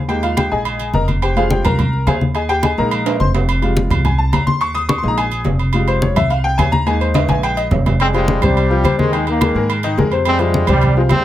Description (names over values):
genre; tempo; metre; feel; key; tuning
latin, salsa; 213 BPM; 4/4; straight; F minor; A4 = 441 Hz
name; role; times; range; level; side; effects
upright bass; bass; 0.0-11.2 s; F1 to Ab2; -18 LUFS; right 1 dB; none
bright upright piano; accompaniment; 0.1-11.2 s; C3 to Eb6; -19 LUFS; left 2 dB; none
agogo bells and timbales; percussion; 0.1-11.2 s; none; -23 LUFS; right 6 dB; none
congas; percussion; 0.1-11.2 s; none; -19 LUFS; left 1 dB; none
bright trombone section; melody; 8.0-11.2 s; C3 to C4; -18 LUFS; equal; none
room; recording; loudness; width
light reverb; close, detailed microphones; -13 LUFS; side -13 dB against mid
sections
0.0-8.0 A section; 8.0-11.2 B section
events
upright piano solo 0.0-8.0; drum fill 3.1-3.5, 7.2-8.0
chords
0.1 Ebsus4; 1.2 Fmadd9; 4.6 Ebsus4; 5.7 Fmadd9; 6.9 Ebsus4; 8.0 Fmadd9; 9.1 Ebsus4; 10.3 Fmadd9